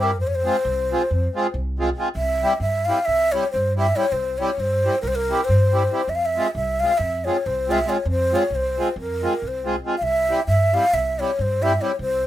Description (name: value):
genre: balkan folk, Balkan wedding band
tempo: 275 BPM (eighths)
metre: 9/8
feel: straight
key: unclear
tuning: A4 = 440 Hz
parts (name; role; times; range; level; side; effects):
- breathy ney; melody; 0.0-12.3 s; Bb4 to F5; -21 LUFS; equal; none
- accordion; accompaniment; 0.0-11.9 s; G3 to Ab4; -23 LUFS; equal; none
- upright bass; bass; 0.0-12.3 s; C2 to G2; -24 LUFS; equal; none
room: light reverb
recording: minimal, uncompressed stereo recording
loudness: -19 LUFS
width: side -13 dB against mid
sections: 0.0-2.2 A section; 2.2-12.3 B section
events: none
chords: 0.2 Fm; 2.2 C; 6.1 Fm; 10.0 C